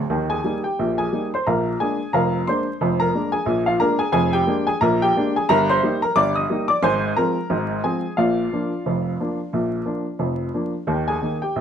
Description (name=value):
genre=ragtime piano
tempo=89 BPM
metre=2/4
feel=swing 59% on 16ths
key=Eb major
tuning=A4 = 440 Hz
part: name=clear upright piano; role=solo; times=0.1-11.6 s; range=F1 to Eb6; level=-19 LUFS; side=equal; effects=none
room=moderate studio reverb, RT60 0.8 s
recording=vinyl crackle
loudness=-19 LUFS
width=side -8 dB against mid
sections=0.1-11.6 A section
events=none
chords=0.1 Eb; 1.4 Bb7; 2.8 Bb7/F; 5.5 Eb/G; 6.8 Fm/Ab; 8.2 Bb; 10.9 Eb